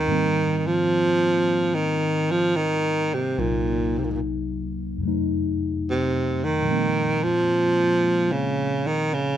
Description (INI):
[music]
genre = jazz ballad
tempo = 73 BPM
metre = 4/4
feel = swing 68% on 8ths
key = unclear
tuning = A4 = 440 Hz
[part]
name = warm baritone saxophone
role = melody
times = 0.0-9.4 s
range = Ab2 to F3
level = -21 LUFS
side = right 1 dB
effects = plate reverb
[part]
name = mellow tine electric piano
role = accompaniment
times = 0.0-9.4 s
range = C2 to Eb4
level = -26 LUFS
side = left 2 dB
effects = phaser
[sound]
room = moderate studio reverb, RT60 0.6 s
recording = none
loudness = -20 LUFS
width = side -11 dB against mid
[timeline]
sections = 0.0-9.4 A section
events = none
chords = 0.1 Abmaj9; 3.4 Cm7b5; 5.0 F7b9; 6.6 Bbsus2